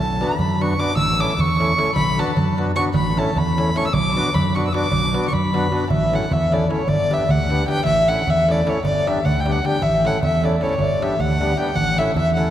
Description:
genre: balkan folk, Balkan wedding band.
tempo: 306 BPM (eighths).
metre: 5/8.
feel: straight.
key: unclear.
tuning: A4 = 440 Hz.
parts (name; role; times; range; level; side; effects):
dark violin; melody; 0.0-12.5 s; C#5 to E6; -21 LUFS; equal; none.
fingered electric bass; bass; 0.0-12.5 s; G1 to F#2; -22 LUFS; equal; none.
darbuka; percussion; 0.1-12.5 s; none; -24 LUFS; right 2 dB; none.
accordion; accompaniment; 0.2-12.5 s; G3 to B4; -25 LUFS; left 1 dB; none.
room: wet cathedral reverb, RT60 4.8 s.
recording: recorded in a church or concert hall.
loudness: -17 LUFS.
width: side -11 dB against mid.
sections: 0.0-5.9 A section; 5.9-12.5 B section.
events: violin solo 0.0-5.9.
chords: 0.0 Bm; 1.0 A; 2.0 Bm; 2.9 A; 3.9 Bm; 5.9 A; 6.9 G; 7.9 A; 8.8 G; 9.8 A; 10.8 G; 11.8 A.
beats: 0.18 0.38 0.57 0.77 | 0.97 1.17 1.37 1.56 1.76 | 1.96 2.16 2.36 2.55 2.75 | 2.95 3.15 3.34 3.54 3.74 | 3.94 4.13 4.33 4.53 4.72 | 4.92 5.12 5.31 5.51 5.71 | 5.90 6.10 6.29 6.49 6.69 | 6.88 7.08 7.28 7.47 7.67 | 7.86 8.06 8.25 8.45 8.64 | 8.84 9.04 9.23 9.43 9.62 | 9.82 10.01 10.21 10.40 10.59 | 10.79 10.98 11.18 11.37 11.57 | 11.76 11.95 12.15 12.34.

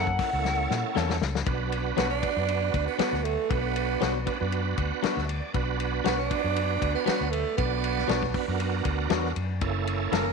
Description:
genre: straight-eighth soul blues.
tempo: 118 BPM.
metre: 4/4.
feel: swing 53% on 16ths.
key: B harmonic minor.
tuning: A4 = 440 Hz.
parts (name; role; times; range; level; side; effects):
lightly driven lead guitar; melody; 0.0-1.4 s; F#5; -29 LUFS; left 2 dB; slapback echo.
bright tonewheel organ; accompaniment; 0.0-10.3 s; A#3 to F#5; -31 LUFS; right 12 dB; slow rotary speaker, overdrive, chorus vibrato.
direct-recorded clean electric guitar; stabs; 0.0-10.3 s; E3 to A4; -33 LUFS; left 11 dB; slapback echo.
vintage muted fingered electric bass; bass; 0.0-10.3 s; F#1 to A#2; -30 LUFS; left 1 dB; none.
warm soul drum kit; drums; 0.1-10.3 s; hi-hat, kick drum, ride cymbal, snare drum; -32 LUFS; left 6 dB; none.
growling tenor saxophone; second line; 2.0-10.3 s; A3 to A#4; -29 LUFS; right 9 dB; none.
room: moderate echo chamber reverb, RT60 1.8 s, small room ambience.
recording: 1960s-style stereo with parts hard left and right.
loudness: -24 LUFS.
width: side -4 dB against mid.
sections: 0.0-1.5 A section; 1.5-10.3 A section.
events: lead electric guitar solo 0.0-1.5; drum fill 0.4-1.5; tenor saxophone solo 1.5-10.3; tonewheel organ fill 4.5-5.5.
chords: 0.0 F#7#9; 1.5 Bm; 9.6 F#7#9.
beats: 0.45 0.96 | 1.47 1.98 2.49 3.00 | 3.51 4.01 4.53 5.03 | 5.54 6.05 6.56 7.07 | 7.58 8.09 8.60 9.11 | 9.62 10.13.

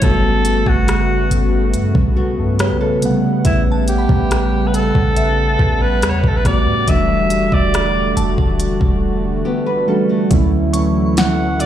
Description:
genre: contemporary R&B.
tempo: 70 BPM.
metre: 4/4.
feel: straight.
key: D major.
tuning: A4 = 440 Hz.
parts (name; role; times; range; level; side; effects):
breathy alto saxophone; melody; 0.0-11.7 s; E4 to F#5; -20 LUFS; equal; ping-pong delay.
muted felt-like synth keys; accompaniment; 0.0-11.7 s; C3 to F#5; -20 LUFS; right 3 dB; chorus.
warm analog pad; sustained chords; 0.0-11.7 s; C#3 to F#5; -22 LUFS; left 2 dB; chorus.
clean 808-style bass; bass; 0.0-11.7 s; E1 to A2; -19 LUFS; equal; none.
smooth R&B drum kit; drums; 0.0-11.7 s; hi-hat, kick drum, rim click, snare drum; -18 LUFS; equal; none.
nylon-string guitar; arpeggios; 2.2-3.2, 9.4-10.5 s; A3 to B4; -21 LUFS; left 2 dB; ping-pong delay.
glassy synth bell; texture; 3.5-11.7 s; E5 to C#6; -30 LUFS; right 1 dB; chorus, ping-pong delay.
room: digital ambience.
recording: played on a big sound system in a bare room, large studio reverb.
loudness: -13 LUFS.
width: side -10 dB against mid.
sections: 0.0-10.3 A section; 10.3-11.7 B section.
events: none.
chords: 0.0 Gmaj9#11; 3.0 A13; 6.9 Em11; 10.3 Dmaj9.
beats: | 0.02 0.88 1.74 2.59 | 3.45 4.31 5.17 6.02 | 6.88 7.74 8.59 9.45 | 10.31 11.16.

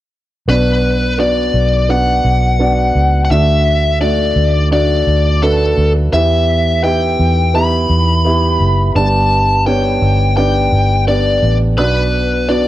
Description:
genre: piano-driven pop.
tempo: 85 BPM.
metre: 4/4.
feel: straight.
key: B minor.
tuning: A4 = 441 Hz.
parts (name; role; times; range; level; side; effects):
biting lead guitar; melody; 0.5-12.7 s; A4 to B5; -16 LUFS; left 2 dB; overdrive.
warm grand piano; accompaniment; 0.5-12.7 s; G2 to E5; -17 LUFS; right 2 dB; cassette tape.
vintage muted fingered electric bass; bass; 0.5-12.7 s; F#1 to E2; -14 LUFS; equal; none.
room: moderate small room reverb, RT60 0.5 s.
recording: home recording on cassette.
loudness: -11 LUFS.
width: side -14 dB against mid.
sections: 0.5-12.7 A section.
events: none.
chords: 0.5 Bm; 3.3 D; 6.1 Em; 9.0 G; 11.8 Bm.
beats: | 0.48 1.19 1.89 2.60 | 3.30 4.01 4.72 5.42 | 6.13 6.84 7.54 8.25 | 8.96 9.66 10.37 11.07 | 11.78 12.49.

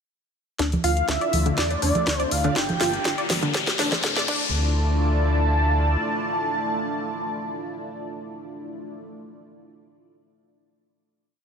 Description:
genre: progressive house.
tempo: 122 BPM.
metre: 4/4.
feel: straight.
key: D minor.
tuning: A4 = 440 Hz.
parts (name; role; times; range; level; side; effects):
lush unison pad; sustained chords; 0.6-9.0 s; E3 to D5; -30 LUFS; equal; chorus, phaser, sidechain pumping.
wide unison pluck; arpeggios; 0.6-4.7 s; D3 to D5; -28 LUFS; equal; sidechain pumping, ping-pong delay.
round analog bass; bass; 0.6-6.0 s; G1 to A2; -24 LUFS; equal; sidechain pumping.
electronic kick drum; drums; 0.6-4.4 s; none; -32 LUFS; equal; overdrive, high-pass filter on kick, studio reverb.
house drum kit; drums; 0.6-4.4 s; crash cymbal, hi-hat, snare drum; -26 LUFS; left 1 dB; overdrive, studio reverb.
riser; sound effects; 1.7-4.5 s; none; -30 LUFS; left 6 dB; none.
congas and cowbell; percussion; 0.7-4.0 s; none; -31 LUFS; right 2 dB; sidechain pumping on perc.
wide unison lead; melody; 0.8-9.0 s; D5 to A5; -27 LUFS; right 1 dB; wide subtle chorus, ping-pong delay.
room: light reverb, digital ambience.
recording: high-pass filter.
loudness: -21 LUFS.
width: side -6 dB against mid.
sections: 0.6-4.5 build; 4.5-8.5 final hit.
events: build-up 0.6-4.5; drum fill 0.6-4.5; filter sweep on synth pluck 0.6-4.5; filter sweep 0.6-4.5; riser 1.7-4.5.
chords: 0.6 Dmadd9; 2.6 Gm; 3.5 Am; 4.3 Dmadd9.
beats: | 0.59 1.08 1.58 2.07 | 2.56 3.05 3.54 4.04 | 4.53 5.02 5.51 6.00 | 6.50 6.99 7.48 7.97.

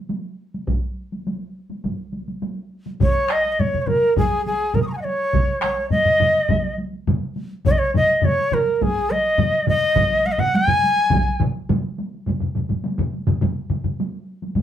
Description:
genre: japanese traditional, taiko drum ensemble.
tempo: 104 BPM.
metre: 4/4.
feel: straight.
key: Ab suspended pentatonic.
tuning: A4 = 440 Hz.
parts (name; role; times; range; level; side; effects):
taiko ensemble; percussion; 0.1-14.6 s; none; -27 LUFS; right 1 dB; none.
taiko ensemble; percussion; 0.7-11.3 s; none; -24 LUFS; right 1 dB; none.
breathy bright shakuhachi; melody; 3.0-11.4 s; Ab4 to Eb6; -18 LUFS; equal; none.
taiko ensemble; percussion; 3.0-14.6 s; none; -24 LUFS; left 4 dB; none.
taiko ensemble; percussion; 3.0-14.6 s; none; -26 LUFS; right 3 dB; none.
room: wet studio ambience, RT60 0.5 s.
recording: band playing live in one room.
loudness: -18 LUFS.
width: side -10 dB against mid.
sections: 0.0-3.0 A section; 3.0-12.3 B section; 12.3-14.6 C section.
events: none.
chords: none.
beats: 0.09 | 0.67 1.26 1.84 2.43 | 3.01 3.60 4.18 4.76 | 5.34 5.92 6.50 7.08 | 7.66 8.24 8.82 9.40 | 9.97 10.55 11.12 11.70 | 12.27 12.85 13.42 13.99 | 14.56.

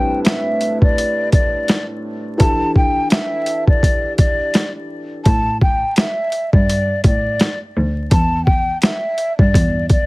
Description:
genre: hip hop, boom-bap hip-hop.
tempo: 84 BPM.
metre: 4/4.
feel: swing 58% on 16ths.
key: A minor.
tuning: A4 = 440 Hz.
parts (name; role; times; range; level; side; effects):
breathy hollow jazz flute; melody; 0.0-10.1 s; D5 to A5; -20 LUFS; equal; high-pass filter, low-pass filter.
dark upright piano; accompaniment; 0.0-5.3 s; A2 to B4; -23 LUFS; equal; cassette tape, high-pass filter, low-pass filter.
boom bap sampler-style drum kit; drums; 0.2-10.1 s; hi-hat, kick drum, snare drum; -14 LUFS; equal; none.
warm cello; bass; 5.3-9.9 s; D2 to A2; -19 LUFS; equal; none.
room: light reverb.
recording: heavily compressed radio sound, multiband compression, vinyl crackle.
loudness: -14 LUFS.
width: side -22 dB against mid.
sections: 0.0-10.1 A section.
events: break 0.0-5.3.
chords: 0.0 Am11; 2.4 Em7; 5.3 Asus4; 8.1 N.C..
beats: 0.26 0.97 1.69 | 2.40 3.12 3.83 4.54 | 5.26 5.97 6.69 7.40 | 8.12 8.83 9.54.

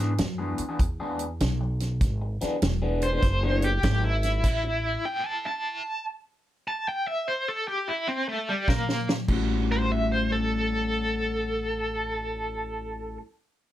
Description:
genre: electric blues shuffle.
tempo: 99 BPM.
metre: 4/4.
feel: swing 65% on 8ths.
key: A mixolydian.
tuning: A4 = 440 Hz.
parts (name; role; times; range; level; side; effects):
electric guitar through a small old amp; riff; 0.0-4.7, 8.9-13.2 s; A2 to G#4; -30 LUFS; left 3 dB; phaser.
upright bass; bass; 0.0-4.9, 8.7-13.2 s; E1 to Bb2; -28 LUFS; equal; none.
natural country drum kit; drums; 0.2-4.6, 8.7-9.5 s; crash cymbal, hi-hat, kick drum, snare drum; -27 LUFS; equal; none.
overdriven electric guitar; melody; 3.0-13.2 s; G3 to A5; -27 LUFS; equal; tremolo, slapback echo.
room: little or no reverb.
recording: none.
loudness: -24 LUFS.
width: side -12 dB against mid.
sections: 0.0-9.3 A section; 9.3-11.7 B section.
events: overdriven electric guitar solo 0.0-9.3; stop 4.4-8.7; drum fill 8.7-9.3.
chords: 0.0 E7; 4.4 A5; 8.7 N.C.; 9.3 A6.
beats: 0.20 0.80 1.41 | 2.02 2.63 3.23 3.84 | 4.45 5.05 5.66 6.26 | 6.87 7.47 8.07 8.68 | 9.28 9.89 10.49 11.10.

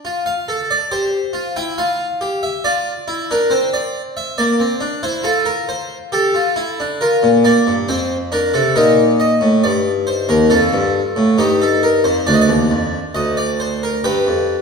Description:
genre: classical, baroque-style 4-part fugue for harpsichord.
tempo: 69 BPM.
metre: 4/4.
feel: straight.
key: Bb major.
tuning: A4 = 440 Hz.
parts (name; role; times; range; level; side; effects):
harpsichord; solo; 0.0-14.6 s; D2 to G5; -14 LUFS; equal; none.
room: wet recital hall reverb, RT60 1.2 s.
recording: heard from further back in the room.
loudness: -14 LUFS.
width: side -5 dB against mid.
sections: 0.0-14.0 A section.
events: none.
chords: 0.0 F; 1.8 G7(no3)/F; 3.5 C7; 5.2 F; 7.0 Bb; 8.7 Cm7 (rootless); 10.5 F7; 12.3 Bb/D (rootless); 14.0 G7.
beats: | 0.04 0.91 1.78 2.65 | 3.52 4.38 5.25 6.12 | 7.00 7.87 8.74 9.62 | 10.50 11.38 12.26 13.14 | 14.03.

